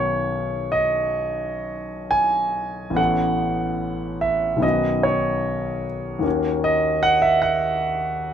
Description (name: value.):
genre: classical, impressionist solo piano.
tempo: 59-78 BPM.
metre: 4/4.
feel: rubato.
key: B mixolydian.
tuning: A4 = 441 Hz.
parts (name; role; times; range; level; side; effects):
warm concert grand piano; solo; 0.0-8.3 s; A1 to G#5; -20 LUFS; right 1 dB; none.
room: light reverb.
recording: dark, warm production.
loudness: -19 LUFS.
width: side -8 dB against mid.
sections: 0.0-8.3 A section.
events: none.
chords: 0.0 Badd9; 3.0 A69; 4.6 Badd9; 6.3 D#m7.